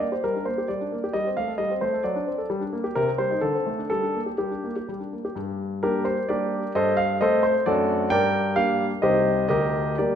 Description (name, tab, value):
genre	classical-period piano sonatina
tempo	122-135 BPM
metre	3/4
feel	rubato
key	G minor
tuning	A4 = 439 Hz
part	warm concert grand piano	solo	0.0-10.2 s	C2 to G5	-22 LUFS	equal	none
room	wet recital hall reverb, RT60 1.4 s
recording	minimal, uncompressed stereo recording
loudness	-22 LUFS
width	side -8 dB against mid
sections	0.0-5.4 A section; 5.4-10.2 B section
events	none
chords	0.0 Gm; 1.2 F9/G; 2.1 D7/F#; 2.5 Gm; 3.0 Cm; 3.4 D5; 3.9 Gm; 6.7 F9/G; 7.6 D7/F#; 8.1 Gm; 9.0 Cm; 9.5 Gm/D